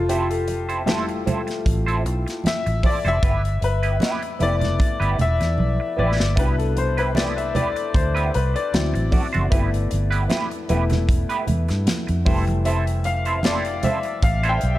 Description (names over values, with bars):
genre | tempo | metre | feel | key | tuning
lush 1970s-style soul | 76 BPM | 4/4 | swing 54% on 16ths | G mixolydian | A4 = 440 Hz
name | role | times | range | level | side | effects
clear baby grand piano | accompaniment | 0.0-14.8 s | B2 to G5 | -25 LUFS | left 4 dB | none
vintage muted fingered electric bass | bass | 0.0-14.8 s | E1 to G2 | -22 LUFS | equal | none
semi-hollow electric guitar | riff | 0.1-14.7 s | A3 to D5 | -28 LUFS | right 4 dB | wah
modern studio drum kit | drums | 0.1-14.8 s | hi-hat, kick drum, snare drum | -23 LUFS | equal | none
congas | percussion | 0.5-14.4 s | none | -29 LUFS | right 3 dB | none
room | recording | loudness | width
light reverb, small room reverb | dark, warm production | -19 LUFS | side -15 dB against mid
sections
0.0-14.8 A section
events
grand piano solo 0.0-14.8; drum fill 5.6-6.4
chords
0.0 Fmaj7; 3.2 G6; 6.4 Cmaj7; 8.7 D7; 9.5 G6; 12.3 Fmaj7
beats
| 0.09 0.88 1.66 2.45 | 3.23 4.02 4.80 5.59 | 6.38 7.16 7.95 8.73 | 9.52 10.30 11.09 11.87 | 12.66 13.44 14.23